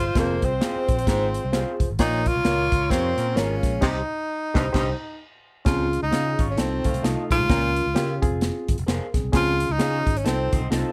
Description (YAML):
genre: uptempo 1960s-style soul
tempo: 131 BPM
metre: 4/4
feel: swing 59% on 8ths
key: F minor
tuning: A4 = 440 Hz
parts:
  - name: breathy tenor saxophone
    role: melody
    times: 0.0-10.7 s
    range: Bb3 to F4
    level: -27 LUFS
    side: equal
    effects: none
  - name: warm horn section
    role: second line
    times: 0.0-4.9 s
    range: G3 to Db5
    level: -38 LUFS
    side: equal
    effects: none
  - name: barky reed electric piano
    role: accompaniment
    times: 0.0-10.9 s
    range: Bb2 to F5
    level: -32 LUFS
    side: equal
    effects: overdrive
  - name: fingered electric bass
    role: bass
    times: 0.0-10.8 s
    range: F1 to Db3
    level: -30 LUFS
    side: equal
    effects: none
  - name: warm baritone saxophone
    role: riff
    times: 0.2-9.6 s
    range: F2 to C3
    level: -31 LUFS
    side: equal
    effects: none
  - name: natural country drum kit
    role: drums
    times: 0.2-10.8 s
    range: crash cymbal, hi-hat, kick drum, snare drum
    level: -27 LUFS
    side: equal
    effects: none
  - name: electric guitar through a small old amp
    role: stabs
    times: 0.6-10.9 s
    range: F4 to F5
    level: -36 LUFS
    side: equal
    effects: subtle chorus
  - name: electric guitar through a small old amp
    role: riff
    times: 2.9-7.5, 10.2-10.9 s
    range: Ab3 to Db5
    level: -36 LUFS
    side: equal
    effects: spring reverb
room: light reverb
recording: none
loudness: -23 LUFS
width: mono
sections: 0.0-5.7 A section; 5.7-10.9 B section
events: band accent 3.8-5.7; reed electric piano fill 5.0-5.7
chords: 0.0 Fm; 2.0 Bbm; 3.8 Cm; 5.7 Db; 6.6 F7/C; 7.5 Bbm/Db; 8.2 Fm; 9.3 Db; 10.2 F7/C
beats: | 0.16 0.62 1.08 1.54 | 2.00 2.45 2.91 3.37 | 3.83 4.29 4.75 5.21 | 5.66 6.12 6.58 7.04 | 7.50 7.96 8.42 8.88 | 9.33 9.79 10.25 10.71